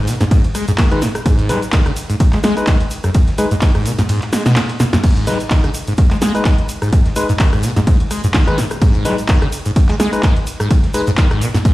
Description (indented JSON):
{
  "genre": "acid house",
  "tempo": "127 BPM",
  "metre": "4/4",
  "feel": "swing 55% on 16ths",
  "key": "G# minor pentatonic",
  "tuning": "A4 = 440 Hz",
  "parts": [
    { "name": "liquid acid bass", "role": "riff", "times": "0.0-11.7 s", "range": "F#2 to G#3", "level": "-18 LUFS", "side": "equal", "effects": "wide subtle chorus, sidechain pumping, tape echo" },
    { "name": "breakbeat sampler-style drum kit", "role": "drums", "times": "0.1-11.7 s", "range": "hi-hat, snare drum", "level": "-35 LUFS", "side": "right 1 dB", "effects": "none" },
    { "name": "punchy analog drum machine", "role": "drums", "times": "0.1-11.7 s", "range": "crash cymbal, handclaps, hi-hat, ride cymbal, rim click, snare drum", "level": "-22 LUFS", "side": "equal", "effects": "none" },
    { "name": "tube shaker", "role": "percussion", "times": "0.1-11.7 s", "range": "none", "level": "-33 LUFS", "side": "right 2 dB", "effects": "none" },
    { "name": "electronic kick drum", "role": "drums", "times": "0.3-11.7 s", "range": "none", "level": "-13 LUFS", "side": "equal", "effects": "none" },
    { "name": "barky tine electric piano", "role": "stabs", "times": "0.9-11.0 s", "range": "G#3 to B4", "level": "-22 LUFS", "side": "left 2 dB", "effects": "overdrive, tape echo" }
  ],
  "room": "light reverb, digital ambience",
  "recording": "played on a big sound system in a bare room, stone room reverb",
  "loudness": "-12 LUFS",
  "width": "side -17 dB against mid",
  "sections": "0.0-11.7 A section",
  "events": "kick drops out 4.1-5.0; drum fill 4.8",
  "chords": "0.0 G#m"
}